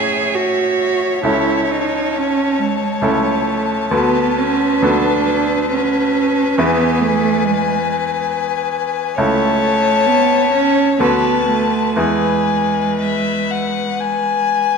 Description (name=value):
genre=classical, slow romantic movement for piano quartet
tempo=58-70 BPM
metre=3/4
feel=rubato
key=unclear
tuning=A4 = 440 Hz
part: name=rich violin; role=melody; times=0.0-14.8 s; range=E5 to A5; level=-20 LUFS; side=left 8 dB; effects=none
part: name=rich cello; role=second line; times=0.0-14.5 s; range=G#3 to G#4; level=-18 LUFS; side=right 5 dB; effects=none
part: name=warm violin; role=second line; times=0.0-14.8 s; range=B4 to C#5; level=-21 LUFS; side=left 5 dB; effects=none
part: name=bright baby grand piano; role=accompaniment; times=0.0-14.8 s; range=C#2 to A4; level=-21 LUFS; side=right 1 dB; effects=none
room=wet recital hall reverb, RT60 1.7 s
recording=none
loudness=-14 LUFS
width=side -5 dB against mid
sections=0.0-14.8 A section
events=none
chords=0.0 Amaj7; 1.2 A/C#; 3.9 Bm7/D; 6.6 E; 9.2 A/C#; 11.0 Bm7/D; 12.0 E